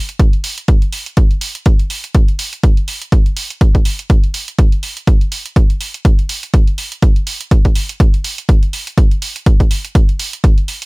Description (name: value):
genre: house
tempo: 123 BPM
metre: 4/4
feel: swing 56% on 16ths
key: none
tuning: none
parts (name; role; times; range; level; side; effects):
- electronic hi-hat; drums; 0.1-10.9 s; none; -24 LUFS; right 3 dB; sidechain pumping on hats
- electronic kick drum; drums; 0.2-10.5 s; none; -10 LUFS; equal; none
room: little or no reverb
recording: none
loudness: -12 LUFS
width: side -29 dB against mid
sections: 0.0-10.9 A section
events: none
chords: none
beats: 0.20 | 0.68 1.17 1.66 2.15 | 2.63 3.12 3.61 4.10 | 4.59 5.07 5.56 6.05 | 6.54 7.03 7.51 8.00 | 8.49 8.98 9.46 9.95 | 10.44